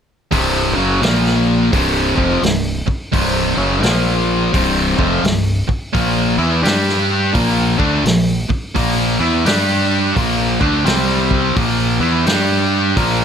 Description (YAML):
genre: blues rock power trio and southern rock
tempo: 85 BPM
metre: 4/4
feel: swing 63% on 8ths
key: C mixolydian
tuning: A4 = 440 Hz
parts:
  - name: sludgy distorted guitar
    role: riff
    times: 0.3-13.2 s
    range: C2 to G4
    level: -15 LUFS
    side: equal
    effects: overdrive
  - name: growling fingered electric bass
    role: bass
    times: 0.3-13.2 s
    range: C1 to G2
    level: -20 LUFS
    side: equal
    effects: overdrive
  - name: vintage drum kit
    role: drums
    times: 0.3-13.2 s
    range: hi-hat, kick drum, snare drum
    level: -21 LUFS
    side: equal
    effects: none
room: light reverb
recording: none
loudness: -13 LUFS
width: side -8 dB against mid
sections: 0.3-13.2 A section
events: none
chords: 0.3 C5; 1.0 Bb5; 1.7 C5; 3.8 Bb5; 4.5 C5; 5.9 Bb5; 6.6 G5; 7.3 Bb5; 9.5 G5; 10.2 Bb5; 10.9 C5; 11.6 Bb5; 12.3 G5